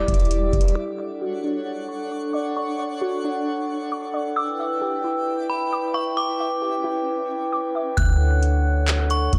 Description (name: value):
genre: hip hop, atmospheric cloud-rap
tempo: 133 BPM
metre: 4/4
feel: half-time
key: D major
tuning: A4 = 441 Hz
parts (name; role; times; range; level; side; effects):
- metallic FM bell; melody; 0.0-9.4 s; B5 to F#6; -32 LUFS; equal; chorus, low-pass filter, dub echo
- glass harmonica; sustained chords; 0.0-9.4 s; D4 to G5; -28 LUFS; equal; sidechain pumping, low-pass filter
- soft 808-style bass; bass; 0.0-0.7, 8.0-9.4 s; E1 to D2; -22 LUFS; equal; none
- twinkling granular texture; texture; 0.0-8.0 s; G3 to G5; -37 LUFS; equal; built-in reverb
- booming analog drum machine; drums; 0.1-0.8, 8.0-9.4 s; handclaps, hi-hat, kick drum; -24 LUFS; equal; vintage 12-bit sampler grit
- warbly dusty pluck; arpeggios; 0.8-8.0 s; D4 to D6; -33 LUFS; equal; chorus, low-pass filter, dub echo
room: light reverb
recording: echo-heavy mix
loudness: -24 LUFS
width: mono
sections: 0.8-8.0 A section; 8.0-9.4 B section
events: filter sweep 0.8-8.0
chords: 0.0 Em7; 0.8 Dmaj7; 4.4 Em7; 8.0 Dmaj7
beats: 0.31 | 0.76 1.21 1.66 2.11 | 2.56 3.01 3.46 3.92 | 4.37 4.82 5.27 5.72 | 6.17 6.62 7.07 7.53 | 7.98 8.43 8.88 9.33